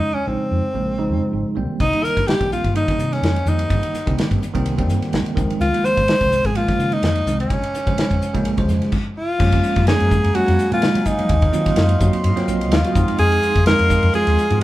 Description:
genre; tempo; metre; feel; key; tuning
electric jazz fusion; 126 BPM; 4/4; swing 54% on 16ths; Bb dorian; A4 = 440 Hz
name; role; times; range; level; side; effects
clear alto saxophone; melody; 0.0-14.6 s; C4 to C5; -20 LUFS; left 1 dB; none
bell-like tine electric piano; accompaniment; 0.0-14.6 s; Db3 to C5; -23 LUFS; right 2 dB; medium stereo tremolo
woody fretless electric bass; bass; 0.1-14.6 s; Ab1 to Gb3; -21 LUFS; equal; none
modern studio drum kit; drums; 1.8-14.6 s; crash cymbal, hi-hat, kick drum, ride cymbal, snare drum; -22 LUFS; equal; none
sweeping resonant pad; sustained chords; 9.9-14.6 s; Ab4 to C6; -29 LUFS; equal; chorus, phaser
room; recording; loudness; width
moderate large studio reverb, RT60 1.3 s; band playing live in one room; -16 LUFS; side -15 dB against mid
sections
0.0-9.4 A section; 9.4-14.6 B section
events
stop 8.9-9.4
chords
0.0 Bbm9; 1.6 Cm7; 5.4 Dbmaj7; 7.5 Bbm9; 9.4 Gbmaj9; 11.3 Ebm69; 13.0 Fm7

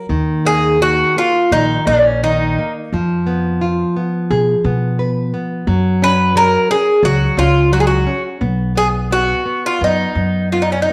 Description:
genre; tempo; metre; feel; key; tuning
fado-style ballad; 86 BPM; 4/4; rubato; Eb minor; A4 = 440 Hz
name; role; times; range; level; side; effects
nylon-string guitar; accompaniment; 0.0-10.9 s; Eb3 to Cb5; -22 LUFS; equal; none
upright bass; bass; 0.1-10.9 s; Bb1 to Cb3; -20 LUFS; equal; transformer saturation
Irish bouzouki; melody; 0.5-10.9 s; Db4 to Cb5; -16 LUFS; equal; none
room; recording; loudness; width
wet echo chamber reverb, RT60 1.3 s, small room ambience; none; -15 LUFS; mono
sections
0.1-10.9 A section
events
none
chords
0.1 Eb5; 2.9 Fdim; 5.7 Gb5; 8.4 B

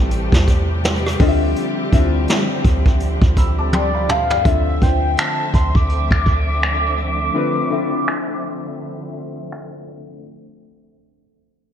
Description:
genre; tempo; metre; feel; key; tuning
contemporary R&B; 83 BPM; 4/4; swing 58% on 16ths; D minor; A4 = 440 Hz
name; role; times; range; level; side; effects
warm concert grand piano; accompaniment; 0.0-10.3 s; A2 to E6; -24 LUFS; left 5 dB; lush chorus
muted studio string section; sustained chords; 0.0-10.2 s; C3 to E5; -26 LUFS; right 1 dB; sidechain pumping
clean 808-style bass; bass; 0.0-7.3 s; A1 to E2; -19 LUFS; equal; none
vintage brush drum kit; drums; 0.1-9.7 s; finger snaps, hi-hat, kick drum, rim click, snare drum, toms; -18 LUFS; equal; gated reverb
mellow horn-like synth lead; melody; 3.7-9.5 s; D5 to D6; -22 LUFS; equal; chorus, phaser, ping-pong delay
room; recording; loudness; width
light reverb, small room ambience; bright 1980s-style digital production, low-pass filter; -15 LUFS; side -9 dB against mid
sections
0.0-4.5 A section; 4.5-10.2 B section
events
drum fill 3.7-4.5; filter sweep 4.5-10.2; break 7.3-10.2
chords
0.0 Am7; 1.2 Dm11; 4.5 Dm9

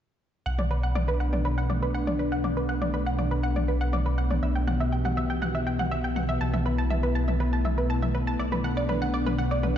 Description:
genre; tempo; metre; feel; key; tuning
melodic techno; 121 BPM; 4/4; straight; B minor; A4 = 440 Hz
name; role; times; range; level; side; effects
evolving wavetable pad; sustained chords; 0.5-9.8 s; E3 to G4; -30 LUFS; left 1 dB; chorus, built-in reverb
analog pluck; arpeggios; 0.5-9.7 s; B4 to A5; -31 LUFS; right 1 dB; analog chorus, cassette tape, tape echo
dark detuned saw bass; bass; 0.5-9.8 s; B1; -27 LUFS; equal; none
electronic toms; drums; 0.6-9.7 s; none; -34 LUFS; left 2 dB; overdrive
room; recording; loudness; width
light reverb; played on a big sound system in a bare room, stone room reverb, nothing above 7.6 kHz; -24 LUFS; side -10 dB against mid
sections
0.5-9.8 A section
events
filter sweep on ambient pad 0.5-9.8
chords
0.5 Bm7; 4.4 Emadd9/B; 6.4 Asus2/B; 8.4 Bm7

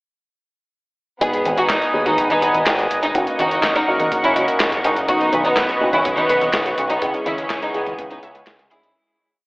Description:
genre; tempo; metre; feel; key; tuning
italo disco; 124 BPM; 4/4; straight; G# minor; A4 = 440 Hz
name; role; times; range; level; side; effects
warm studio violin section; melody; 1.2-8.9 s; B3 to G#4; -20 LUFS; equal; tape echo
warm analog pad; sustained chords; 1.2-8.9 s; G#4 to D#6; -22 LUFS; equal; chorus
dark grand piano; stabs; 1.2-8.9 s; G#3 to G#4; -26 LUFS; equal; vintage 12-bit sampler grit, tape echo
fingered electric bass with an envelope filter; bass; 1.2-8.9 s; F#1 to D#2; -26 LUFS; equal; none
dusty soul sampler-style drum kit; drums; 1.2-8.9 s; congas, handclaps, hi-hat, snare drum; -24 LUFS; equal; overdrive
electronic kick drum; drums; 1.2-8.7 s; none; -33 LUFS; equal; overdrive
wide unison pluck; arpeggios; 5.1-8.9 s; F#3 to G#5; -30 LUFS; equal; none
room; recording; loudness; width
wet lush hall reverb, RT60 2.0 s; dreamy mix soaked in reverb, telephone sound; -16 LUFS; side -31 dB against mid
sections
1.2-9.0 chorus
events
fade-out 6.4-9.0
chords
1.2 G#m; 3.1 F#6; 5.1 Badd9; 7.0 C#m

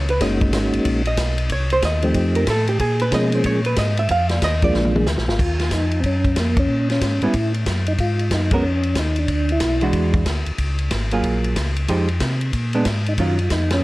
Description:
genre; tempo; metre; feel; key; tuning
soul jazz organ trio; 185 BPM; 4/4; swing 63% on 8ths; Eb minor; A4 = 441 Hz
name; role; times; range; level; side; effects
archtop guitar, miked and amplified; accompaniment; 0.0-4.9, 7.2-13.4 s; Eb3 to F5; -22 LUFS; right 2 dB; none
mellow tonewheel organ; bass; 0.0-13.8 s; Gb1 to C3; -21 LUFS; equal; slow rotary speaker
vintage drum kit; drums; 0.1-13.8 s; crash cymbal, hi-hat, kick drum, ride cymbal, snare drum, toms; -24 LUFS; equal; none
percussive tonewheel organ; melody; 0.2-10.1, 13.1-13.8 s; F3 to Ab4; -22 LUFS; equal; slow rotary speaker, chorus vibrato, tape echo
room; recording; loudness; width
light reverb, studio ambience; cassette tape; -17 LUFS; side -19 dB against mid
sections
0.0-5.4 A section; 5.4-13.8 B section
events
hollow-body jazz guitar solo 0.0-5.4; drum fill 4.7-5.4; band accent 6.5, 8.5, 13.7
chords
0.2 Gb6; 1.5 Cm; 2.2 F7; 2.8 Bbm7; 4.1 F7(no3); 4.7 Bb7; 5.4 Ebm9; 6.7 Bbm7; 7.3 Gbm7; 8.0 Ab7(no3); 9.3 Bm; 9.9 E9; 10.6 Gbmaj9; 11.9 Fm9; 12.5 Bb7b9; 13.2 Ebm9

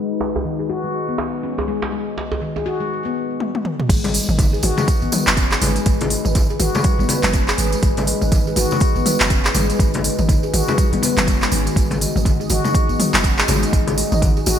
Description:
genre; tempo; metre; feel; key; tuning
afro house; 122 BPM; 4/4; swing 59% on 16ths; G# minor; A4 = 440 Hz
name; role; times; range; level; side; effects
dark analog pad; sustained chords; 0.0-14.6 s; G#3 to D#5; -27 LUFS; right 2 dB; chorus, sidechain pumping
handpan; arpeggios; 0.0-14.5 s; D#3 to G#4; -23 LUFS; left 4 dB; sidechain pumping, ping-pong delay
djembe; percussion; 0.2-2.6 s; none; -27 LUFS; right 3 dB; none
deep house drum kit; drums; 3.4-14.6 s; crash cymbal, handclaps, hi-hat, toms; -21 LUFS; equal; studio reverb
warm 808-style bass; bass; 3.9-14.6 s; F#1 to G#1; -23 LUFS; right 1 dB; sidechain pumping
electronic kick drum; drums; 3.9-14.3 s; none; -18 LUFS; right 1 dB; studio reverb
tambourine; percussion; 3.9-14.6 s; none; -28 LUFS; right 4 dB; none
congas; percussion; 4.0-14.3 s; none; -25 LUFS; left 2 dB; none
room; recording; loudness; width
light reverb, small room ambience; bright 1980s-style digital production, low-pass filter; -16 LUFS; side -9 dB against mid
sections
0.0-3.9 A section; 3.9-14.6 B section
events
filter sweep 0.0-3.9; drum fill 3.4-3.9; drop 3.9-14.6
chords
0.0 G#m7

